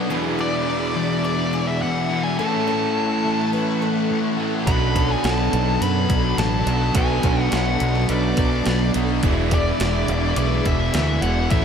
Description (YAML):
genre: rock, shoegaze and dream pop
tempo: 105 BPM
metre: 4/4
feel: straight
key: E mixolydian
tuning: A4 = 440 Hz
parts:
  - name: string machine, violins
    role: sustained chords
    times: 0.0-11.6 s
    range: D4 to C#6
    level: -30 LUFS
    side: right 1 dB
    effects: ensemble chorus
  - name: distorted electric guitar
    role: riff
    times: 0.0-11.6 s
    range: E2 to B3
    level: -28 LUFS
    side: left 1 dB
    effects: overdrive
  - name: raw garage guitar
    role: riff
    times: 0.0-11.6 s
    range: E2 to A4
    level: -26 LUFS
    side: right 8 dB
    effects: overdrive, reverse reverb
  - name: thick fuzz guitar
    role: riff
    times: 0.0-11.6 s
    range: E2 to B3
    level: -25 LUFS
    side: left 7 dB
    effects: distortion, analog chorus
  - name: picked twelve-string acoustic guitar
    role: arpeggios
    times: 0.1-11.6 s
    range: G#4 to D5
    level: -32 LUFS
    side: left 5 dB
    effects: lush chorus, ping-pong delay
  - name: nasal lead guitar with a parked wah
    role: melody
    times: 0.4-11.6 s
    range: D5 to B5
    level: -26 LUFS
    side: left 1 dB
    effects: overdrive, ping-pong delay
  - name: overdriven fingered electric bass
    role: bass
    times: 4.7-11.6 s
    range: E1 to F#2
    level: -22 LUFS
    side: right 1 dB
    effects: none
  - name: crisp 8-bit digital drum machine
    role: drums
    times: 4.7-11.6 s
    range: hi-hat, kick drum, snare drum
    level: -24 LUFS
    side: equal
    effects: none
room: moderate lush hall reverb, RT60 1.9 s, digital ambience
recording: dreamy mix soaked in reverb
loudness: -18 LUFS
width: side -7 dB against mid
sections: 0.0-11.6 A section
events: none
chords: 0.1 E7; 2.4 A6; 4.7 Bm7; 9.2 E7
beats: | 0.10 0.67 1.25 1.82 | 2.39 2.96 3.53 4.10 | 4.67 5.24 5.82 6.39 | 6.96 7.53 8.10 8.67 | 9.24 9.81 10.38 10.95 | 11.52